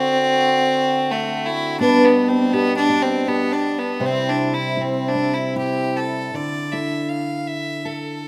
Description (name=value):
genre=celtic folk, Celtic slow air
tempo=75-86 BPM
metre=3/4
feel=rubato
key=unclear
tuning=A4 = 440 Hz
part: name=clear fiddle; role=melody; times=0.0-8.3 s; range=A3 to F5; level=-23 LUFS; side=equal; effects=none
part: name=mellow accordion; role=sustained chords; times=0.0-6.3 s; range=B2 to F#4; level=-29 LUFS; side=equal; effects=none
part: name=fingerpicked steel-string acoustic guitar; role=accompaniment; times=1.8-8.3 s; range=C3 to C5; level=-24 LUFS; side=equal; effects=none
room=moderate scoring stage reverb, RT60 1.9 s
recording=none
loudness=-20 LUFS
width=mono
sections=0.0-6.3 A section; 6.3-8.3 B section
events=none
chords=0.0 D7; 1.8 G/B; 4.0 C; 6.3 Dsus2